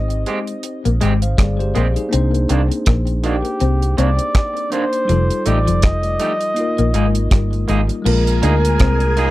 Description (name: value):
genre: lovers rock reggae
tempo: 81 BPM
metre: 4/4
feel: swing 57% on 16ths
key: unclear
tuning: A4 = 440 Hz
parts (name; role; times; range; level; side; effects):
- warm flugelhorn; melody; 0.0-9.3 s; G4 to Eb5; -22 LUFS; equal; tape echo
- bell-like tine electric piano; accompaniment; 0.0-9.3 s; G3 to F5; -24 LUFS; left 2 dB; fast stereo tremolo
- vintage muted fingered electric bass; bass; 0.0-9.3 s; F1 to D2; -17 LUFS; equal; none
- deep reggae drum kit; drums; 0.1-9.3 s; crash cymbal, hi-hat, kick drum, rim click; -18 LUFS; equal; none
- electric guitar through a small old amp; stabs; 0.3-9.3 s; Eb3 to Ab4; -22 LUFS; right 4 dB; none
- electric guitar through a small old amp; riff; 0.9-9.0 s; F3 to D4; -25 LUFS; left 6 dB; tape echo
- phased string machine; second line; 8.1-9.3 s; Ab4 to Ab5; -26 LUFS; right 1 dB; ensemble chorus, phaser
room: little or no reverb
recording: dry, close 1970s-style studio recording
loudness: -14 LUFS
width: side -16 dB against mid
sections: 0.0-8.1 A section; 8.1-9.3 B section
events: none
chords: 0.0 Abmaj7; 2.1 Cm9; 5.1 F9; 6.6 Bb7sus4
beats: 0.64 1.38 | 2.13 2.87 3.61 4.35 | 5.09 5.84 6.58 7.32 | 8.06 8.80